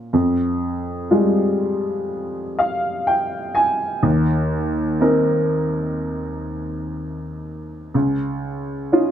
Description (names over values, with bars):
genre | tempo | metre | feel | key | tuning
folk | 62 BPM | 4/4 | straight | F minor | A4 = 440 Hz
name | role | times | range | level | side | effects
dark upright piano | solo | 0.0-9.1 s | Db2 to Ab5 | -19 LUFS | equal | none
room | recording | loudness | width
moderate large studio reverb, RT60 0.9 s | none | -18 LUFS | side -10 dB against mid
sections
0.0-9.1 A section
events
none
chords
0.1 Fmadd9; 4.0 Cm7/Eb; 7.9 Dbadd9